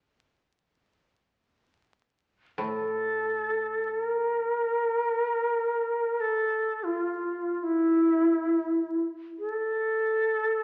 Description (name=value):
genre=japanese traditional, Japanese chamber music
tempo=free time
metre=none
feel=none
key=unclear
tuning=A4 = 440 Hz
part: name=koto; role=accompaniment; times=0.0-6.0 s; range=A2 to E4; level=-39 LUFS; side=equal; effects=none
part: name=reedy shakuhachi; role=melody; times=2.6-10.6 s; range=E4 to Bb4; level=-28 LUFS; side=equal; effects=none
room=wet recital hall reverb, RT60 1.4 s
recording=very old 78 rpm record, vinyl crackle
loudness=-28 LUFS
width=mono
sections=0.0-10.6 A section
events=none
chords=none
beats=free time